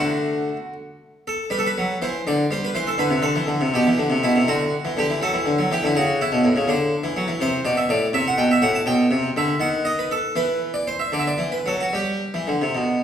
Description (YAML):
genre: classical, baroque-style suite movement for harpsichord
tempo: 72-83 BPM (dotted quarters)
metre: 6/8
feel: rubato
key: G major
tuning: A4 = 440 Hz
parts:
  - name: harpsichord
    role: solo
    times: 0.0-13.0 s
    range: A2 to A5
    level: -19 LUFS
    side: equal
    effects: none
room: wet recital hall reverb, RT60 1.4 s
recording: heard from further back in the room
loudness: -19 LUFS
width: side -9 dB against mid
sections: 0.0-1.5 A section; 1.5-13.0 B section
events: none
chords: 0.0 D; 1.5 G5; 3.0 D5; 3.7 G/B; 4.5 D; 6.0 A/C#; 6.7 D; 7.4 Amadd9; 8.9 G/B; 9.6 N.C.; 11.1 D; 11.9 G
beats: 0.73 | 1.52 2.27 | 3.01 3.75 | 4.48 5.22 | 5.95 6.68 | 7.41 8.14 | 8.87 9.60 | 10.35 11.12 | 11.93 12.75